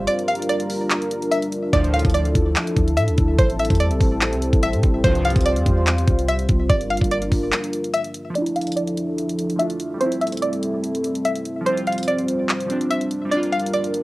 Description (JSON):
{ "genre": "hip hop, trap", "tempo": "145 BPM", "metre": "4/4", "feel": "half-time", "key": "D minor", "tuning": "A4 = 440 Hz", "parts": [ { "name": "dark analog pad", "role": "sustained chords", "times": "0.0-14.0 s", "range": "F3 to E5", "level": "-24 LUFS", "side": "equal", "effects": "chorus, low-pass filter" }, { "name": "clean 808-style bass", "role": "bass", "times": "0.0-7.5 s", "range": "G1 to A2", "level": "-22 LUFS", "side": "equal", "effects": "none" }, { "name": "string-like resonator pluck", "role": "melody", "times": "0.1-14.0 s", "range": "C5 to F5", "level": "-23 LUFS", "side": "equal", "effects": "chorus, low-pass filter, cassette tape" }, { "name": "trap drum kit", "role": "drums", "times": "0.1-14.0 s", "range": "handclaps, hi-hat, kick drum", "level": "-22 LUFS", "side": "equal", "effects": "cassette tape" }, { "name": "chorused polysynth", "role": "stabs", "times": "1.7-2.0, 5.0-5.3 s", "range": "C2 to F3", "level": "-29 LUFS", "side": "equal", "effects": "plate reverb, tape echo" }, { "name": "glassy digital keys", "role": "accompaniment", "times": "8.3-14.0 s", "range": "F3 to F4", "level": "-25 LUFS", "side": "right 1 dB", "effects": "chorus, low-pass filter, plate reverb" } ], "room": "light reverb", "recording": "home recording on cassette", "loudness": "-18 LUFS", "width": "side -19 dB against mid", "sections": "0.0-8.4 A section; 8.4-14.0 B section", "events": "break 0.1-1.7, 7.5-8.4; filter sweep 8.4-14.0", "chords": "0.1 Gm7; 1.7 Dmadd9; 3.4 Am7; 5.0 Csus4; 6.7 Gm7; 8.4 Dmadd9; 10.0 Am7; 11.7 Csus4; 13.3 Gm7", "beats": "| 0.08 0.49 0.90 1.32 | 1.73 2.15 2.56 2.97 | 3.39 3.80 4.21 4.63 | 5.04 5.46 5.87 6.28 | 6.70 7.11 7.52 7.94 | 8.35 8.77 9.18 9.59 | 10.01 10.42 10.84 11.25 | 11.66 12.08 12.49 12.90 | 13.32 13.73" }